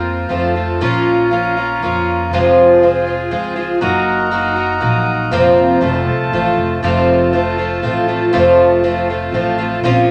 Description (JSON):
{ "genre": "acoustic folk duo or small band", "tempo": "120 BPM", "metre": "3/4", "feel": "straight", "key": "unclear", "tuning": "A4 = 440 Hz", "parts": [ { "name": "fingerpicked twelve-string acoustic guitar", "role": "accompaniment", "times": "0.0-10.1 s", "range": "F2 to Gb4", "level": "-16 LUFS", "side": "equal", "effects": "none" }, { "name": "hand-pumped harmonium", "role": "sustained chords", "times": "0.0-9.8 s", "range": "F4 to Bb5", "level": "-22 LUFS", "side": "equal", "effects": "none" }, { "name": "upright bass", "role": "bass", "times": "0.0-10.1 s", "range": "F1 to F2", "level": "-24 LUFS", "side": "equal", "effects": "none" } ], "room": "wet large studio reverb, RT60 1.3 s", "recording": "none", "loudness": "-15 LUFS", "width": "mono", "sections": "0.0-6.8 A section; 6.8-9.8 B section", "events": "none", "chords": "0.3 F; 0.8 Bbm; 2.3 Fm; 3.8 Ebm/Gb; 5.3 Fsus4; 5.8 F", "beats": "0.31 | 0.81 1.31 1.82 | 2.32 2.82 3.32 | 3.82 4.33 4.83 | 5.33 5.83 6.33 | 6.83 7.33 7.83 | 8.33 8.83 9.33 | 9.83" }